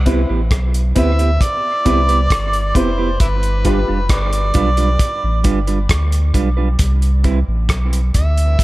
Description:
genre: dub reggae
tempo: 67 BPM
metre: 4/4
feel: straight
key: C major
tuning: A4 = 443 Hz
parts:
  - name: warm sub bass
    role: bass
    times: 0.0-8.6 s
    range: F1 to D2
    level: -16 LUFS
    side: equal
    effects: none
  - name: mellow electric guitar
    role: accompaniment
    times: 0.1-7.4 s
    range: G3 to B4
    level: -23 LUFS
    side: right 5 dB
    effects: dub echo
  - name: warm upright piano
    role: stabs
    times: 0.1-3.9 s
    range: C4 to B4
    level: -25 LUFS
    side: left 4 dB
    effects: dub echo
  - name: cloth-damped thuddy drum kit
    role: drums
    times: 0.1-8.6 s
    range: hi-hat, kick drum, rim click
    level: -18 LUFS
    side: equal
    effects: none
  - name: overdriven harmonica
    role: melody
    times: 1.0-8.6 s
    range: E4 to E5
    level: -21 LUFS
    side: right 1 dB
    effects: dub echo
room: light reverb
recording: none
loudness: -13 LUFS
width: side -18 dB against mid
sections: 0.0-8.6 A section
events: none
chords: 0.0 Cmaj7; 3.2 G7; 6.8 Cmaj7

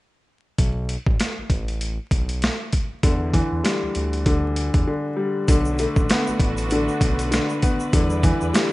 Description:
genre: hip hop, boom-bap hip-hop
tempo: 98 BPM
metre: 4/4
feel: swing 58% on 16ths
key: B minor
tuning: A4 = 440 Hz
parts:
  - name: smooth synth bass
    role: bass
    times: 0.6-8.5 s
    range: A1 to E2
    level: -25 LUFS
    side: equal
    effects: none
  - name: boom bap sampler-style drum kit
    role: drums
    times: 0.6-8.7 s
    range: hi-hat, kick drum, snare drum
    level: -21 LUFS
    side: equal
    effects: none
  - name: warm upright piano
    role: accompaniment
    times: 3.0-8.7 s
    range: D3 to B3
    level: -23 LUFS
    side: left 2 dB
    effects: cassette tape, high-pass filter, low-pass filter
  - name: warm studio string section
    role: sustained chords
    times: 5.5-8.7 s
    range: G3 to B4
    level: -29 LUFS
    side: right 1 dB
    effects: high-pass filter, low-pass filter
  - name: tube shaker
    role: percussion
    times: 5.5-8.7 s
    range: none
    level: -41 LUFS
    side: right 3 dB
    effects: none
room: little or no reverb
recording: rough home demo mix, vinyl crackle, nothing above 10.7 kHz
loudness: -19 LUFS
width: side -19 dB against mid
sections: 0.6-5.5 A section; 5.5-8.7 B section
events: break 4.9-5.5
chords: 0.6 Asus2; 3.0 Em7; 5.5 Bm7; 7.9 Em7

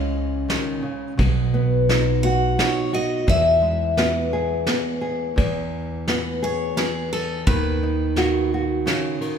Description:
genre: acoustic folk duo or small band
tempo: 86 BPM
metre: 3/4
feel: straight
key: E major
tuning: A4 = 440 Hz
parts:
  - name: picked steel-string acoustic guitar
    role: melody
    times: 0.0-9.2 s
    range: G#4 to F#5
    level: -24 LUFS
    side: left 2 dB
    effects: none
  - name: nylon-string guitar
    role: accompaniment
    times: 0.0-9.4 s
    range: E2 to G#4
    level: -23 LUFS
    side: equal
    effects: none
  - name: upright bass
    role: bass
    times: 0.0-8.8 s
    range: B1 to E2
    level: -24 LUFS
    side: right 2 dB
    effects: none
  - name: soft brush drum kit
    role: drums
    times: 0.5-9.4 s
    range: kick drum, ride cymbal, snare drum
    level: -25 LUFS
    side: equal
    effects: none
room: moderate scoring stage reverb, RT60 2.0 s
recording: recorded in a church or concert hall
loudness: -19 LUFS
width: side -7 dB against mid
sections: 0.0-5.4 A section; 5.4-9.4 A section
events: none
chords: 0.0 C#m; 1.2 B; 3.3 E; 7.5 B/D#

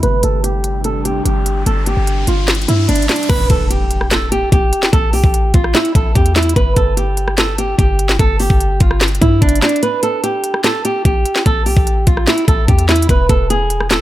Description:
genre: hip hop, trap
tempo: 147 BPM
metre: 4/4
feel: half-time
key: A minor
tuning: A4 = 440 Hz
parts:
  - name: flamenco guitar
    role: melody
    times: 0.0-14.0 s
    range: D4 to B4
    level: -17 LUFS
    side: right 1 dB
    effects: low-pass filter, digital delay
  - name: deep dark ambient pad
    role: sustained chords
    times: 0.0-3.3 s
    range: C3 to G4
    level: -26 LUFS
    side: equal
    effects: chorus, built-in reverb, low-pass filter
  - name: warm 808-style bass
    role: bass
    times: 0.0-14.0 s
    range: E1 to G2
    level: -16 LUFS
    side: equal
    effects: none
  - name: trap drum kit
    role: drums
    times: 0.0-14.0 s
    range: crash cymbal, handclaps, hi-hat, kick drum, rim click, snare drum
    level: -15 LUFS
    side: equal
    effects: none
  - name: riser and impact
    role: sound effects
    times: 0.9-4.9 s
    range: none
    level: -26 LUFS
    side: left 1 dB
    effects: none
room: little or no reverb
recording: none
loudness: -12 LUFS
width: side -14 dB against mid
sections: 0.0-3.3 A section; 3.3-14.0 B section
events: filter sweep 0.0-3.3; riser 0.9-3.3; impact 3.3-4.9; break 9.8-10.6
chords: 0.0 Gsus4; 3.3 A5; 6.6 N.C.; 9.8 A5; 13.1 E

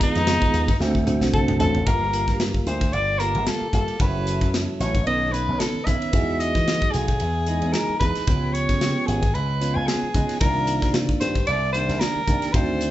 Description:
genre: electric jazz fusion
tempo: 112 BPM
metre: 4/4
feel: swing 55% on 16ths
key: unclear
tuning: A4 = 440 Hz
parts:
  - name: warm soprano saxophone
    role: melody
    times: 0.0-12.9 s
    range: Eb4 to G#5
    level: -25 LUFS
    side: left 1 dB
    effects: none
  - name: percussive tonewheel organ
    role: accompaniment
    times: 0.0-12.9 s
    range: D3 to B4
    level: -26 LUFS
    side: right 2 dB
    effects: slow rotary speaker
  - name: modern studio drum kit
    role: drums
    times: 0.0-12.9 s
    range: hi-hat, kick drum, ride cymbal, snare drum, toms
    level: -24 LUFS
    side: equal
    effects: none
  - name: slap bass with an envelope filter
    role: bass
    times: 0.2-12.9 s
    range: F#1 to E3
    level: -26 LUFS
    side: equal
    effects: none
room: moderate large studio reverb, RT60 1.0 s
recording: band playing live in one room, nothing above 7.9 kHz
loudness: -19 LUFS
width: side -14 dB against mid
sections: 0.0-1.9 A section; 1.9-12.9 B section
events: soprano saxophone solo 0.0-1.9; drum fill 0.8-1.9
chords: 0.0 Fm7b5; 0.8 D7; 1.9 Gm9; 4.0 F#m7; 5.1 B9; 6.1 Emaj9; 8.3 C#7#11; 10.4 Cm11

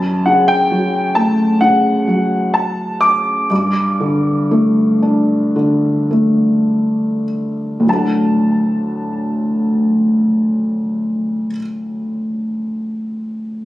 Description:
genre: pop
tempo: 49-68 BPM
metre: 4/4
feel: straight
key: D major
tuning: A4 = 440 Hz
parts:
  - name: warm baby grand piano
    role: melody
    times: 0.0-11.5 s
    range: F#5 to D6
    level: -17 LUFS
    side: left 1 dB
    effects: digital delay
  - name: felt-muted upright piano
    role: accompaniment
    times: 0.0-13.7 s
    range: D2 to F#5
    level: -15 LUFS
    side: equal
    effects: none
room: light reverb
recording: recorded on a phone in the room, studio reverb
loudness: -14 LUFS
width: side -16 dB against mid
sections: 0.0-7.9 A section; 7.9-12.8 B section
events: slowing down 0.0-7.9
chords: 0.0 F#m; 3.5 Gsus2; 7.9 D

